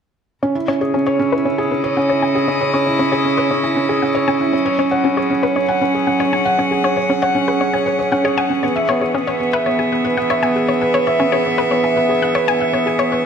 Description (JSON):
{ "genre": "piano and strings electronica", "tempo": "117 BPM", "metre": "4/4", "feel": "straight", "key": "C# minor", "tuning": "A4 = 440 Hz", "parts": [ { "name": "rich string quartet", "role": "sustained chords", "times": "0.4-13.3 s", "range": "C#3 to F#5", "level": "-21 LUFS", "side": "left 1 dB", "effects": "none" }, { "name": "analog pluck", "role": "arpeggios", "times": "0.4-13.2 s", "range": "C#4 to G#5", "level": "-22 LUFS", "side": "left 4 dB", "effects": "chorus, ping-pong delay" }, { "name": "felt-muted upright piano", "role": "riff", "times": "0.4-13.3 s", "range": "B3 to F#5", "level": "-17 LUFS", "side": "right 2 dB", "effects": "ping-pong delay" } ], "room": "wet recital hall reverb, RT60 1.4 s, small room ambience", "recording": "none", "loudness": "-14 LUFS", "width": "side -7 dB against mid", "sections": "0.4-13.3 A section", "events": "filter sweep on synth arpeggio sound 0.4-13.3", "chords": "0.4 C#madd9; 4.5 F#sus2; 8.6 E" }